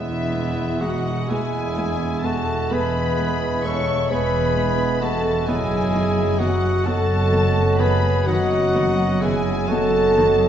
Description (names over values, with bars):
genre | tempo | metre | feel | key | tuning
classical, slow romantic movement for symphony orchestra | 43 BPM (dotted quarters) | 12/8 | rubato | E major | A4 = 441 Hz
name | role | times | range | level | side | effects
rich symphonic violin section | melody | 0.0-10.5 s | E5 to C#6 | -31 LUFS | left 3 dB | none
concert flute | second line | 0.0-10.5 s | D#5 to E5 | -33 LUFS | left 1 dB | none
mellow clarinet | second line | 0.0-10.5 s | B3 | -32 LUFS | equal | none
warm cor anglais | second line | 0.0-10.5 s | B3 to A4 | -29 LUFS | right 1 dB | none
warm symphonic violin section | second line | 0.0-10.5 s | E5 to C#6 | -33 LUFS | left 2 dB | none
warm bassoon | accompaniment | 0.0-10.5 s | F#3 to G#3 | -32 LUFS | right 3 dB | none
dark French horn section | sustained chords | 0.0-10.5 s | E4 to C#5 | -23 LUFS | left 1 dB | none
warm trumpet | stabs | 0.0-10.5 s | E4 to C#5 | -28 LUFS | right 1 dB | none
dark symphonic cello section | bass | 0.0-10.5 s | E2 to F#2 | -28 LUFS | right 2 dB | none
rich symphonic double bass section | bass | 0.0-10.5 s | E1 to F#1 | -24 LUFS | right 1 dB | none
warm symphonic viola section | accompaniment | 0.3-10.3 s | D#3 to B3 | -31 LUFS | right 1 dB | none
room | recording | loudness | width
wet scoring stage reverb, RT60 1.9 s | heard from further back in the room, nothing above 7.9 kHz | -18 LUFS | side -9 dB against mid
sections
0.0-10.5 A section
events
none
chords
0.0 E; 5.5 B7/F#